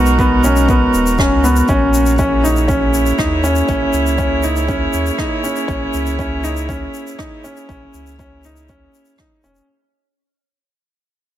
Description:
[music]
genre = piano and strings electronica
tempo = 120 BPM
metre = 4/4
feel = straight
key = unclear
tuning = A4 = 440 Hz
[part]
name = dark string quartet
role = sustained chords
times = 0.0-9.7 s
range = G#3 to C#5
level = -20 LUFS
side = right 3 dB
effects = sidechain pumping
[part]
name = felt-muted upright piano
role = riff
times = 0.0-9.6 s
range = B3 to D#4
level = -17 LUFS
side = left 1 dB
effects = digital delay
[part]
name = warm sub bass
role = bass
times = 0.0-9.6 s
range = D#1 to D#2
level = -19 LUFS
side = equal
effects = sidechain pumping
[part]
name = shaker and rim click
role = drums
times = 0.1-9.7 s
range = none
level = -27 LUFS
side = left 3 dB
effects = none
[part]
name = electronic kick drum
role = drums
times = 0.2-9.3 s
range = none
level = -21 LUFS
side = equal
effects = overdrive
[sound]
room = light reverb, small room ambience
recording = none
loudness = -13 LUFS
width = side -12 dB against mid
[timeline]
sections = 0.0-9.7 A section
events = drop 0.0-9.7; fade-out 1.7-9.7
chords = 0.0 G#m7; 1.7 A#m7b5

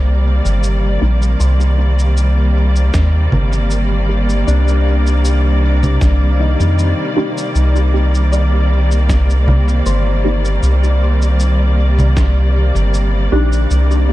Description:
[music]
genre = ambient dub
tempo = 78 BPM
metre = 4/4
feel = straight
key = C minor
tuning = A4 = 440 Hz
[part]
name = rich studio string section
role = sustained chords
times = 0.0-14.1 s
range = C3 to D5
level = -20 LUFS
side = equal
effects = none
[part]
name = concert harp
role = arpeggios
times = 0.0-14.1 s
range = D4 to D6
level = -26 LUFS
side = left 6 dB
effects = low-pass filter, dub echo
[part]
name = soft dub sub bass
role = bass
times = 0.0-14.1 s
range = G1 to F2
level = -12 LUFS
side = equal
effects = none
[part]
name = electronic shaker, snare drum and congas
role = drums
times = 0.5-14.1 s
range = none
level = -22 LUFS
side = right 1 dB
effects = dub echo
[part]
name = filtered dub chord stab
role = stabs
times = 1.0-14.1 s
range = Bb3 to G4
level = -22 LUFS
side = equal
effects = phaser, cassette tape, dub echo
[part]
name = electronic kick drum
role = drums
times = 2.9-12.3 s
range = none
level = -19 LUFS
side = equal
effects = none
[sound]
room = digital ambience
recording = none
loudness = -12 LUFS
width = side -16 dB against mid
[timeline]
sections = 0.0-14.1 A section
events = filter sweep on synth stab 0.0-14.1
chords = 0.0 Cm9

